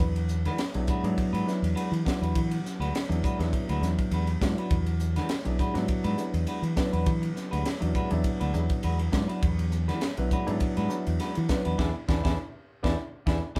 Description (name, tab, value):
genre	electric jazz fusion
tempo	102 BPM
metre	4/4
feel	swing 55% on 16ths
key	E mixolydian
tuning	A4 = 439 Hz
part	dark grand piano	accompaniment	0.0-13.6 s	F#3 to B4	-33 LUFS	equal	none
part	clean electric guitar	stabs	0.0-13.6 s	G#3 to B4	-38 LUFS	equal	none
part	fingered electric bass	bass	0.0-13.6 s	B1 to E3	-31 LUFS	equal	none
part	crisp fusion drum kit	drums	0.0-13.6 s	hi-hat, kick drum, ride cymbal, snare drum	-33 LUFS	equal	none
room	light reverb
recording	band playing live in one room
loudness	-28 LUFS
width	mono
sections	0.0-13.6 A section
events	band accent 11.8-13.6; grand piano fill 13.0-13.6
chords	0.0 E9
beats	0.58 1.17 1.76 | 2.35 2.94 3.53 4.12 | 4.71 5.30 5.89 6.48 | 7.07 7.66 8.25 8.84 | 9.43 10.02 10.61 11.20 | 11.79 12.38 12.97 13.56